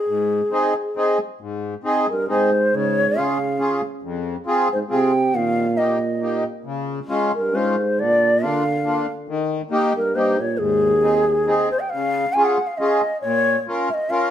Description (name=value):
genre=alpine folk, alpine dance band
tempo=137 BPM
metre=3/4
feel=swing 54% on 8ths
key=Ab major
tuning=A4 = 440 Hz
part: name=hollow bansuri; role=melody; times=0.0-14.3 s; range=Ab4 to Ab5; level=-20 LUFS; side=equal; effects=none
part: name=accordion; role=accompaniment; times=0.1-14.3 s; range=F2 to Bb4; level=-22 LUFS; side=left 1 dB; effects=none
part: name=dark euphonium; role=second line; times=2.1-11.7 s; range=Eb2 to D3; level=-24 LUFS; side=right 3 dB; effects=tape echo
room=wet studio reverb, RT60 0.8 s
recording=band playing live in one room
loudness=-18 LUFS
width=side -10 dB against mid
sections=0.0-1.4 A section; 1.4-11.9 B section; 11.9-14.3 C section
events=none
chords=0.0 Ab; 2.7 Db; 4.0 Fmadd9; 5.3 Eb; 6.7 Db; 8.0 Bb; 9.3 Eb; 10.6 Ab; 11.9 Db; 13.2 Bbm